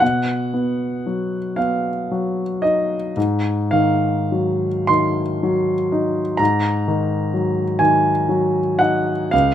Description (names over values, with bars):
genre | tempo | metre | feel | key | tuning
classical, impressionist solo piano | 33-43 BPM (dotted quarters) | 6/8 | rubato | unclear | A4 = 440 Hz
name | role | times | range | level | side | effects
clear grand piano | solo | 0.0-9.5 s | C#2 to B#5 | -17 LUFS | equal | none
room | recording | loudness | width
light reverb | none | -17 LUFS | side -10 dB against mid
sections
0.0-9.5 A section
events
none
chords
0.0 B; 3.2 D#madd11/G#